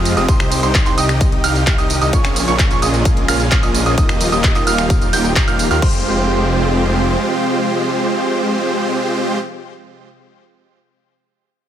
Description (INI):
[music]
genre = EDM, festival progressive house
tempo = 130 BPM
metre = 4/4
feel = straight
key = F minor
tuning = A4 = 440 Hz
[part]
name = lush unison pad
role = sustained chords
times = 0.0-9.4 s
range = C3 to G4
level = -24 LUFS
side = right 1 dB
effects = chorus, sidechain pumping
[part]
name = clear concert grand piano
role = arpeggios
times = 0.0-9.4 s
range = C6 to G6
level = -22 LUFS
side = right 4 dB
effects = sidechain pumping, ping-pong delay
[part]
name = supersaw chords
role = riff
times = 0.0-9.4 s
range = Ab3 to G5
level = -19 LUFS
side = right 1 dB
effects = sidechain pumping, ping-pong delay
[part]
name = detuned saw bass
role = bass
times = 0.0-7.2 s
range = Eb1 to F2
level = -19 LUFS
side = equal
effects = sidechain pumping
[part]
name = big-room dance drum kit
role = drums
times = 0.1-5.9 s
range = crash cymbal, finger snaps, handclaps, hi-hat, ride cymbal, tambourine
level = -21 LUFS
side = equal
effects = none
[part]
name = electronic kick drum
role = drums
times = 0.3-5.9 s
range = none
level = -16 LUFS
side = equal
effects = none
[sound]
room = light reverb, digital ambience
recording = none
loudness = -13 LUFS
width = side -10 dB against mid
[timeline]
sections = 0.0-5.8 A section; 5.8-9.5 B section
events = drop 0.0-5.8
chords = 0.3 Cm; 2.1 Bbm7; 4.0 Ebadd9; 5.8 Fmadd9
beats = | 0.28 0.75 1.21 1.67 | 2.13 2.59 3.05 3.52 | 3.98 4.44 4.90 5.36 | 5.82 6.29 6.75 7.21 | 7.67 8.13 8.59 9.05